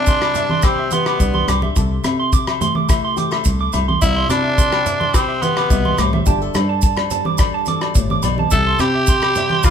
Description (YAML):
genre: highlife guitar band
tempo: 107 BPM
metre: 4/4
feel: straight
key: C major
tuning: A4 = 440 Hz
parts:
  - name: raspy tenor saxophone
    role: melody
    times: 0.0-9.7 s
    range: B3 to A4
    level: -19 LUFS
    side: equal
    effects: none
  - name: nylon-string guitar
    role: accompaniment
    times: 0.0-9.7 s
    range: G2 to A4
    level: -25 LUFS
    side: left 6 dB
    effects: none
  - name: electric guitar at the edge of break-up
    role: arpeggios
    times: 0.0-9.7 s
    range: D5 to D6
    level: -22 LUFS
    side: right 6 dB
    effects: spring reverb, tape echo
  - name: fingered electric bass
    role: bass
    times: 0.0-9.6 s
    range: G1 to C3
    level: -22 LUFS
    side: equal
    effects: none
  - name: cloth-damped thuddy drum kit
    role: drums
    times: 0.1-9.7 s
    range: hi-hat, kick drum, rim click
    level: -18 LUFS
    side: equal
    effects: none
  - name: maracas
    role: percussion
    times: 0.1-9.7 s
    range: none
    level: -28 LUFS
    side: right 5 dB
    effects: none
  - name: agogo bells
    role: percussion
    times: 0.2-9.7 s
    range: none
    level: -26 LUFS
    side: left 11 dB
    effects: none
  - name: congas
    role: percussion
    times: 0.4-9.6 s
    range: none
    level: -25 LUFS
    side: right 4 dB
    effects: none
room: moderate large studio reverb, RT60 1.0 s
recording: band playing live in one room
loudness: -14 LUFS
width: side -8 dB against mid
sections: 0.0-9.7 A section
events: tenor saxophone solo 0.0-9.7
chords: 0.0 C; 1.8 Am/C; 4.0 C; 6.3 Gsus2; 8.5 C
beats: 0.08 0.64 1.20 | 1.77 2.33 2.89 3.46 | 4.02 4.58 5.14 5.71 | 6.27 6.83 7.39 7.96 | 8.52 9.08 9.64